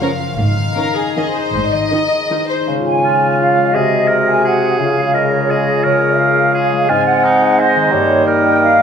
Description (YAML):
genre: classical, orchestral ballroom waltz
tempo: 145-186 BPM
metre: 3/4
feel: rubato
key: Db major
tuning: A4 = 440 Hz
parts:
  - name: warm symphonic violin section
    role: melody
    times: 0.0-2.3 s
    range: Eb5 to F5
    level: -25 LUFS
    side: left 1 dB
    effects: none
  - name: rich studio violin section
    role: second line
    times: 0.0-2.7 s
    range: Ab4 to Eb5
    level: -19 LUFS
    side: left 3 dB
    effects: none
  - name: dark symphonic viola section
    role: accompaniment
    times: 0.0-2.4 s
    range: Eb3 to Eb4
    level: -23 LUFS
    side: right 3 dB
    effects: none
  - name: concert harp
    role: arpeggios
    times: 0.0-8.8 s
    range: Gb2 to Db5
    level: -21 LUFS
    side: left 7 dB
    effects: none
  - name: dark symphonic double bass section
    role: bass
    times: 0.4-1.8 s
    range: Ab1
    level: -22 LUFS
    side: right 3 dB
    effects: none
  - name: rich symphonic cello section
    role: bass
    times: 0.4-1.8 s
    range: Ab2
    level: -23 LUFS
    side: right 2 dB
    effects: none
  - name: warm clarinet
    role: second line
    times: 2.7-8.8 s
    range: F4 to Eb5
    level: -24 LUFS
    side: left 1 dB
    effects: none
  - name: clear bassoon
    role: accompaniment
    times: 2.7-8.8 s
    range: C3 to Ab3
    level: -18 LUFS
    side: right 2 dB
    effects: none
  - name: warm French horn section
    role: sustained chords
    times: 2.7-8.8 s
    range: Ab3 to Gb4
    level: -20 LUFS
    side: left 3 dB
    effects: none
  - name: flute section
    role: second line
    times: 2.9-8.8 s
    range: Db5 to Ab5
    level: -16 LUFS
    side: right 1 dB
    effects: none
  - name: clear oboe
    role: second line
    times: 3.0-8.8 s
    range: Eb4 to C5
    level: -17 LUFS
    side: right 2 dB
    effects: none
room: wet scoring stage reverb, RT60 1.5 s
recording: minimal, uncompressed stereo recording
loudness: -12 LUFS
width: side -7 dB against mid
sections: 0.0-2.7 A section; 2.7-8.8 B section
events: none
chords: 0.4 Absus4; 1.5 Ab; 2.7 Db; 3.7 Ab7/C; 4.8 Db; 6.9 Ab; 7.9 Eb7/G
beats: 0.01 | 0.38 0.76 1.17 | 1.54 1.91 2.30 | 2.67 3.04 3.40 | 3.74 4.09 4.45 | 4.79 5.13 5.50 | 5.84 6.19 6.55 | 6.88 7.23 7.58 | 7.92 8.26 8.61